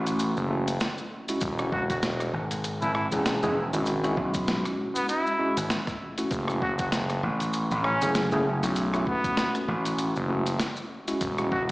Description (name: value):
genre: glitch hop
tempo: 98 BPM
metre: 4/4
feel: swing 57% on 16ths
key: F# minor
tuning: A4 = 440 Hz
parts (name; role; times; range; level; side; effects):
- tine electric piano; stabs; 0.0-11.6 s; G#3 to G#4; -30 LUFS; equal; medium stereo tremolo, sidechain pumping, digital delay
- gritty slap bass; bass; 0.0-10.1 s; E1 to B1; -28 LUFS; equal; overdrive
- boom bap sampler-style drum kit; drums; 0.1-11.7 s; hi-hat, rim click, snare drum; -32 LUFS; equal; none
- maracas; percussion; 0.1-11.7 s; none; -40 LUFS; left 1 dB; none
- gritty driven synth bass; bass; 0.4-11.7 s; E1 to B1; -29 LUFS; equal; none
- electronic kick drum; drums; 1.4-11.7 s; none; -34 LUFS; equal; none
- breathy trumpet; melody; 1.7-11.7 s; B3 to F#4; -30 LUFS; equal; vintage 12-bit sampler grit, digital delay
room: moderate lush hall reverb, RT60 1.9 s, digital ambience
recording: played on a big sound system in a bare room, large studio reverb, small speaker sound, faint mains hum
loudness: -25 LUFS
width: side -20 dB against mid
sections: 0.0-11.7 A section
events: none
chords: 0.0 F#m7; 1.4 E69; 6.3 F#m7; 11.2 E69